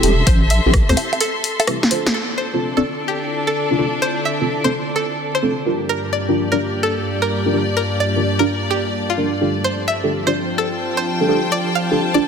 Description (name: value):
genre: UK garage, two-step garage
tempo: 128 BPM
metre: 4/4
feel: swing 67% on 16ths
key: D minor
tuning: A4 = 439 Hz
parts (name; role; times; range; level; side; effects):
- string-like resonator pluck; melody; 0.0-12.3 s; F4 to F5; -23 LUFS; equal; chorus, tape echo
- deep mellow chord stab; stabs; 0.0-12.2 s; C4 to D5; -21 LUFS; right 1 dB; chorus, phaser, tape echo
- deep soft wobble bass; bass; 0.0-1.0 s; E1 to D2; -16 LUFS; equal; chorus, tube saturation
- punchy analog drum machine; drums; 0.0-2.1 s; bongos, hi-hat, rim click, snare drum; -20 LUFS; equal; overdrive, low-pass filter on hats, studio ambience, low-pass filter on snare, low-pass filter on perc
- dark chamber string section; texture; 0.0-12.3 s; D4 to C6; -24 LUFS; left 2 dB; sidechain pumping
- electronic kick drum; drums; 0.3-0.9 s; none; -16 LUFS; equal; overdrive, studio ambience
- soft string machine; sustained chords; 2.7-12.3 s; G2 to A5; -24 LUFS; equal; ensemble chorus, sidechain pumping
room: moderate lush hall reverb, RT60 1.6 s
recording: dense, heavily limited modern master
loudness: -16 LUFS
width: side -7 dB against mid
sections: 0.0-2.1 A section; 2.1-12.3 B section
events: break 1.2-2.1; drum fill 1.8-2.1; band accent 2.0; filter sweep on string machine 2.1-12.3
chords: 0.0 Am7; 2.1 Dm7; 5.7 Gm7; 9.6 F69